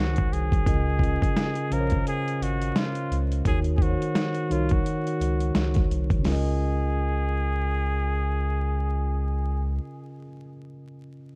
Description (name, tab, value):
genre	lo-fi hip hop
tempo	86 BPM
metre	4/4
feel	swing 58% on 16ths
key	Db major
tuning	A4 = 438 Hz
part	trumpet with straight mute	melody	0.0-9.8 s	F4 to Bb4	-35 LUFS	equal	low-pass filter
part	mellow tine electric piano	accompaniment	0.0-11.4 s	Db3 to F5	-32 LUFS	equal	cassette tape, low-pass filter
part	soft dub sub bass	bass	0.0-9.8 s	Ab1 to Eb2	-29 LUFS	equal	none
part	dusty soul sampler-style drum kit	drums	0.2-6.4 s	hi-hat, kick drum, snare drum	-28 LUFS	equal	overdrive
room	digital ambience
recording	dark, warm production, vinyl crackle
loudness	-25 LUFS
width	mono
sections	0.0-6.2 A section; 6.2-9.0 B section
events	none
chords	0.0 Ab7sus4; 0.7 Db6; 3.5 Ebm13; 6.2 Db6